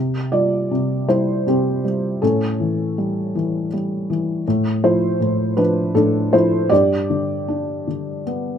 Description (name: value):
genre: classical, lyrical solo piano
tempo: 79 BPM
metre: 3/4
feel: rubato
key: C major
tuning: A4 = 439 Hz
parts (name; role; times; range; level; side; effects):
- felt-muted upright piano; solo; 0.0-8.6 s; G2 to D5; -17 LUFS; equal; none
room: light reverb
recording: close, detailed microphones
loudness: -17 LUFS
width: side -8 dB against mid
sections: 0.0-8.6 A section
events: none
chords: 0.0 C; 2.2 A7; 4.5 Dm/A; 6.7 G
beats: 0.71 1.47 | 2.22 2.96 3.71 | 4.45 5.20 5.95 | 6.71 7.48 8.27